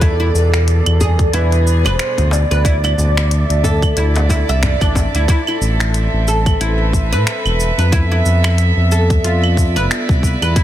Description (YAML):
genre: organic downtempo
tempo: 91 BPM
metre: 4/4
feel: swing 57% on 16ths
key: unclear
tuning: A4 = 440 Hz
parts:
  - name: breathy flute-like synth lead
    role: melody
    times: 0.0-4.6 s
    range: A4 to D5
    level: -22 LUFS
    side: right 1 dB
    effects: analog chorus, vintage 12-bit sampler grit, digital delay
  - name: clear studio string section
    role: sustained chords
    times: 0.0-10.6 s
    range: B2 to E5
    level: -23 LUFS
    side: right 2 dB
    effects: sidechain pumping
  - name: oud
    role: arpeggios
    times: 0.0-10.6 s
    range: D4 to E5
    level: -22 LUFS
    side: equal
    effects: ping-pong delay
  - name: smooth synth bass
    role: bass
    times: 0.0-10.6 s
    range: E1 to A2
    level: -15 LUFS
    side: equal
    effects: sidechain pumping
  - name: electronic kick drum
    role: drums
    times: 0.0-10.6 s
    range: none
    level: -15 LUFS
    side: equal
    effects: none
  - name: organic electronic drum kit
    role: drums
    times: 0.0-10.6 s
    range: claves, finger snaps, hi-hat, shaker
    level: -23 LUFS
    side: right 1 dB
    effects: soft clipping on snare
  - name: wind-like tuned noise texture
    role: texture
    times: 0.0-5.3 s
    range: D5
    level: -29 LUFS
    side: right 6 dB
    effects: built-in reverb
  - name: djembe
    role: percussion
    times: 1.0-5.3 s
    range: none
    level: -23 LUFS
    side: left 2 dB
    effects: none
room: light reverb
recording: dense, heavily limited modern master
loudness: -12 LUFS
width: side -12 dB against mid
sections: 0.0-5.3 A section; 5.3-10.6 A section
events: none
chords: 0.0 E; 2.7 Dsus2; 5.3 Amadd9; 7.9 F